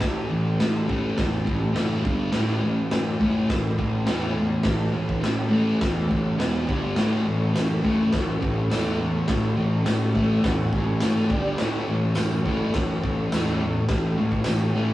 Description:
garage rock duo or trio; 104 BPM; 4/4; straight; A major; A4 = 440 Hz
thick fuzz guitar; riff; 0.0-14.9 s; E2 to A3; -23 LUFS; equal; distortion
fuzz picked electric bass; bass; 0.0-14.9 s; E1 to F#2; -29 LUFS; equal; overdrive, tube saturation
raw garage drum kit; drums; 0.0-14.6 s; hi-hat, kick drum, snare drum; -27 LUFS; equal
combo organ; sustained chords; 7.0-14.9 s; D4 to A5; -35 LUFS; equal
tambourine; percussion; 7.6-14.6 s; -45 LUFS; left 1 dB
moderate studio reverb, RT60 0.6 s; rough rehearsal-room recording, cassette tape, small room ambience; -21 LUFS; side -15 dB against mid
0.0-14.9 A section
transistor combo organ fill 9.9-11.6
0.0 A5; 2.1 G5; 2.4 A5; 6.4 E5; 6.7 G5; 7.0 A; 11.3 G5; 11.6 A
| 0.03 0.61 1.19 1.77 | 2.35 2.93 3.51 4.09 | 4.67 5.25 5.83 6.41 | 6.98 7.56 8.14 8.72 | 9.29 9.87 10.45 11.03 | 11.60 12.18 12.75 13.32 | 13.90 14.47

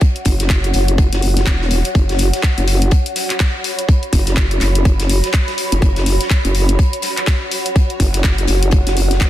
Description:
bass house; 124 BPM; 4/4; swing 59% on 16ths; A4 = 441 Hz
electronic kick drum; drums; 0.0-9.3 s; -14 LUFS; equal
loose indie drum kit; drums; 0.0-9.3 s; hi-hat, snare drum; -29 LUFS; left 2 dB; sidechain pumping on hats, high-pass filter on hats, high-pass filter on snare, high-pass filter on room
granular cloud pad; texture; 0.0-9.3 s; F#4 to B5; -23 LUFS; right 1 dB; built-in reverb, sidechain pumping
garage drum kit; drums; 0.2-9.3 s; handclaps, hi-hat; -22 LUFS; left 2 dB
vowel-sweep wobble bass; bass; 0.3-9.3 s; E1 to F#1; -16 LUFS; equal; chorus, overdrive, sidechain pumping
digital ambience; dense, heavily limited modern master; -13 LUFS; side -13 dB against mid
0.0-9.3 A section
filter sweep on wobble bass 0.0-9.3
0.0 F#5
| 0.01 0.50 0.98 1.47 | 1.95 2.43 2.92 3.40 | 3.89 4.37 4.85 5.34 | 5.82 6.30 6.79 7.27 | 7.76 8.24 8.72 9.21

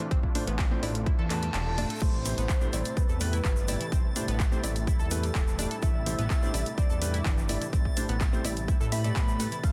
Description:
progressive house; 126 BPM; 4/4; straight; A minor; A4 = 438 Hz
filtered supersaw swell; sustained chords; 0.0-9.7 s; C3 to F4; -42 LUFS; equal; sidechain pumping
analog pluck; arpeggios; 0.0-9.7 s; E3 to A5; -41 LUFS; equal; chorus, sidechain pumping, dub echo
house drum kit; drums; 0.0-9.7 s; crash cymbal, handclaps, hi-hat, ride cymbal; -39 LUFS; equal; overdrive
fat analog bass; bass; 0.1-9.7 s; E1 to A2; -34 LUFS; equal; sidechain pumping
electronic kick drum; drums; 0.1-9.7 s; -29 LUFS; equal; overdrive
dark concert grand piano; stabs; 0.3-9.5 s; A2 to E5; -38 LUFS; equal; sidechain pumping, dub echo
reverse cymbal; sound effects; 1.2-2.0 s; -46 LUFS; equal
soft octave-layered synth lead; melody; 1.3-9.7 s; A4 to B5; -41 LUFS; equal; chorus, phaser, cassette tape, dub echo
egg shaker; percussion; 2.0-9.7 s; -44 LUFS; equal
backwards swelling texture; texture; 2.0-9.7 s; A6; -47 LUFS; equal; built-in reverb, sidechain pumping
digital ambience; dense, heavily limited modern master; -28 LUFS; mono
0.0-9.7 A section
reverse cymbal 1.2-2.0; kick drops out 1.5-2.0
0.0 Dm7; 2.0 Am7
| 0.11 0.59 1.06 1.54 | 2.02 2.49 2.97 3.44 | 3.92 4.40 4.87 5.35 | 5.83 6.30 6.78 7.25 | 7.73 8.21 8.68 9.16 | 9.63

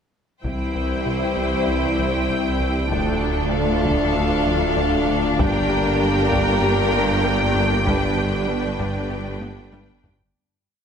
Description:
cinematic, hybrid orchestral and electronic film score; 97 BPM; 4/4; straight; A4 = 439 Hz
warm symphonic violin section; melody; 0.4-10.1 s; F5 to G5; -27 LUFS; equal
rich symphonic violin section; second line; 0.4-10.1 s; A4 to C5; -27 LUFS; left 4 dB
rich symphonic viola section; accompaniment; 0.4-10.1 s; D4 to E4; -28 LUFS; left 2 dB
dark analog pad; sustained chords; 0.4-10.3 s; G3 to D5; -29 LUFS; equal; chorus
dark trombone section; sustained chords; 0.4-10.0 s; D3 to B3; -31 LUFS; right 4 dB
warm French horn section; sustained chords; 0.4-10.0 s; C4 to G4; -29 LUFS; left 4 dB
string-like resonator pluck; arpeggios; 0.4-9.9 s; C3 to G4; -34 LUFS; left 4 dB
rubbery square bass; riff; 0.4-10.2 s; C2 to G3; -30 LUFS; right 1 dB
dark tuba; bass; 0.4-10.1 s; G1 to D2; -28 LUFS; right 4 dB
rich symphonic double bass section; bass; 0.4-10.1 s; G1 to D2; -29 LUFS; right 2 dB
saturated sub bass; bass; 0.4-10.3 s; D1 to C2; -31 LUFS; left 1 dB
warm studio cello section; bass; 0.4-10.1 s; C2 to G2; -29 LUFS; right 1 dB
taiko ensemble; drums; 0.4-10.3 s; -28 LUFS; left 1 dB
moderate scoring stage reverb, RT60 1.7 s; -18 LUFS; side -7 dB against mid
0.4-10.3 theme
fade-out 7.9-10.3; drum fill 9.4-10.3
0.4 C; 2.9 Dm; 5.4 Gm; 7.9 G
| 0.45 1.06 1.68 2.30 | 2.92 3.54 4.16 4.78 | 5.39 6.01 6.63 7.25 | 7.87 8.49 9.11 9.72

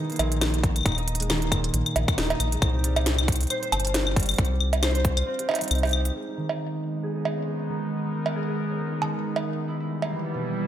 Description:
IDM; 136 BPM; 4/4; swing 56% on 16ths; A4 = 441 Hz
concert harp; arpeggios; 0.0-10.7 s; A#2 to C5; -29 LUFS; equal; vintage 12-bit sampler grit, low-pass filter, dub echo
organic electronic drum kit; drums; 0.1-10.1 s; claves, cowbell, hi-hat, snare drum; -27 LUFS; right 1 dB; overdrive, low-pass filter on snare, low-pass filter on hats, low-pass filter on perc, low-pass filter on room, ping-pong delay
rubbery square bass; bass; 0.2-6.1 s; D#1 to C2; -25 LUFS; equal
electronic kick drum; drums; 0.6-5.1 s; -25 LUFS; equal; overdrive
warbly tape-like pad; sustained chords; 6.7-10.7 s; G3 to A#4; -31 LUFS; right 2 dB; chorus, built-in reverb
light reverb; -23 LUFS; side -11 dB against mid
0.0-6.2 A section; 6.2-10.7 B section
kick drops out 5.3-6.2; filter sweep on harp 6.2-10.7
0.0 D#5; 2.6 Cm; 6.2 G#madd9; 9.7 Em
0.41 | 0.86 1.30 1.74 2.18 | 2.62 3.06 3.50 3.94 | 4.38 4.83 5.27 5.71 | 6.15 6.59 7.03 7.47 | 7.92 8.36 8.80 9.24 | 9.68 10.12 10.56

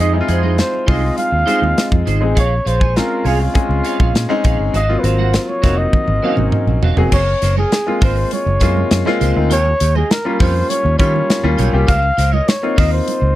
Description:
polished 1980s jazz-funk pop; 101 BPM; 4/4; straight; A4 = 439 Hz
mellow flugelhorn; melody; 0.0-13.4 s; F4 to F5; -19 LUFS; equal; slapback echo
clear baby grand piano; accompaniment; 0.0-13.4 s; C3 to Ab4; -19 LUFS; left 2 dB; wide subtle chorus
clean electric guitar; riff; 0.0-13.3 s; Eb4 to Ab5; -25 LUFS; right 9 dB; ensemble chorus
fingered electric bass; bass; 0.0-13.3 s; Fb1 to Eb3; -16 LUFS; equal
modern studio drum kit; drums; 0.3-13.2 s; crash cymbal, hi-hat, kick drum, snare drum, toms; -17 LUFS; equal
congas; percussion; 0.4-13.2 s; -29 LUFS; right 15 dB
little or no reverb; dry, close 1970s-style studio recording; -13 LUFS; side -14 dB against mid
0.0-7.1 A section; 7.1-13.4 B section
drum fill 5.9-7.1
0.0 Fm7; 2.4 Bbm7; 4.7 Ab13; 7.1 Gbmaj9#11; 9.5 Eb9; 11.9 Dbmaj13
0.58 1.18 1.77 | 2.37 2.96 3.56 4.15 | 4.75 5.34 5.93 6.53 | 7.12 7.72 8.31 8.91 | 9.51 10.10 10.69 11.29 | 11.88 12.48 13.07

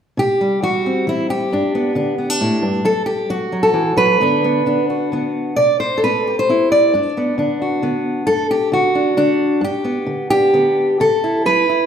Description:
folk, solo fingerstyle acoustic guitar; 133 BPM; 3/4; rubato; G major; A4 = 440 Hz
fingerpicked steel-string acoustic guitar; solo; 0.2-11.9 s; F#2 to D5; -14 LUFS; equal
wet recital hall reverb, RT60 1.7 s; recorded in a church or concert hall; -14 LUFS; side -8 dB against mid
0.2-11.0 A section
0.2 C; 1.5 G; 2.9 Emadd9; 4.2 Gmaj7; 5.6 C; 6.9 Gmaj7; 8.3 D/F#; 9.6 G; 11.0 Dadd9
| 0.17 0.62 1.07 | 1.52 1.97 2.41 | 2.85 3.30 3.75 | 4.20 4.66 5.12 | 5.58 6.04 6.49 | 6.93 7.38 7.83 | 8.28 8.73 9.18 | 9.62 10.08 10.54 | 11.01 11.46

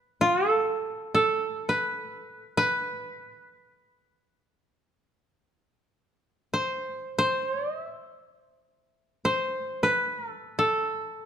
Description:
japanese traditional, Japanese chamber music; free time; A hirajoshi; A4 = 440 Hz
koto; solo; 0.0-11.3 s; A4 to E5; -25 LUFS; right 1 dB
moderate recital hall reverb, RT60 1.5 s; -25 LUFS; side -9 dB against mid
0.0-11.3 A section
free time

